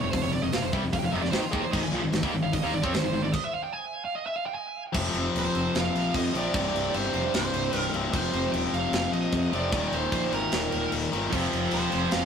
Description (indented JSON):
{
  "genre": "heavy metal",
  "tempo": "150 BPM",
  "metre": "4/4",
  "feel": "straight",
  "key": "unclear",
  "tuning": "A4 = 439 Hz",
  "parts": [
    { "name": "nasal lead guitar with a parked wah", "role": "melody", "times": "0.0-12.2 s", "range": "F4 to Ab5", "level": "-31 LUFS", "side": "right 4 dB", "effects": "overdrive, tape echo" },
    { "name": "tight distorted guitar", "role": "riff", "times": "0.0-12.2 s", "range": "C2 to C4", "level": "-28 LUFS", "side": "left 4 dB", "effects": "distortion" },
    { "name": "tight distorted guitar", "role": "riff", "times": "0.0-3.3, 11.3-12.2 s", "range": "F2 to C4", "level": "-32 LUFS", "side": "right 5 dB", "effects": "distortion" },
    { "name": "fuzz fingered electric bass", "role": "bass", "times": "0.0-12.2 s", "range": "C1 to F2", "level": "-32 LUFS", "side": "right 1 dB", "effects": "overdrive" },
    { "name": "tight metal drum kit", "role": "drums", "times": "0.1-12.2 s", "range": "crash cymbal, hi-hat, kick drum, snare drum", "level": "-32 LUFS", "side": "equal", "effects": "none" }
  ],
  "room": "moderate stone room reverb, RT60 1.1 s",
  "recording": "rough rehearsal-room recording, warm saturation",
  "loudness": "-24 LUFS",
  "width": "side -7 dB against mid",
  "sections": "0.0-4.9 A section; 4.9-12.2 B section",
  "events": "lead electric guitar solo 0.0-4.9; stop 3.3-4.9; half time 4.9-12.2",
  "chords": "0.0 F5; 1.7 Ab5; 4.9 F5; 6.5 C5; 8.1 F5; 9.7 Eb5; 11.3 F5",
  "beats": "| 0.14 0.54 0.94 1.34 | 1.74 2.14 2.54 2.94 | 3.34 3.74 4.14 4.54 | 4.94 5.34 5.74 6.14 | 6.54 6.94 7.34 7.74 | 8.14 8.54 8.94 9.34 | 9.73 10.13 10.54 10.94 | 11.33 11.73 12.13"
}